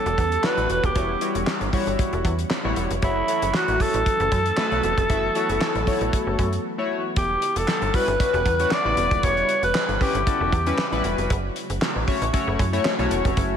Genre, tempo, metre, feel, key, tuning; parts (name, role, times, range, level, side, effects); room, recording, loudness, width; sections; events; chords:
early-eighties boogie funk; 116 BPM; 4/4; straight; E dorian; A4 = 440 Hz
growling alto saxophone; melody; 0.0-11.0 s; E4 to D5; -23 LUFS; equal; slapback echo
string machine, violins; sustained chords; 0.0-13.6 s; C#3 to F#5; -33 LUFS; equal; ensemble chorus
slap-like FM bass; bass; 0.1-13.6 s; D#1 to F#2; -26 LUFS; right 1 dB
damped 70s drum kit; drums; 0.1-13.5 s; handclaps, hi-hat, kick drum, snare drum; -26 LUFS; equal
chorused polysynth; accompaniment; 0.4-13.6 s; C#3 to E5; -27 LUFS; left 3 dB; slapback echo
moderate lush hall reverb, RT60 2.2 s; big arena sound; -20 LUFS; side -8 dB against mid
0.0-7.2 A section; 7.2-13.6 B section
break 6.6-7.2
0.0 Em69; 3.0 F#m7; 7.2 Em69; 11.3 F#m7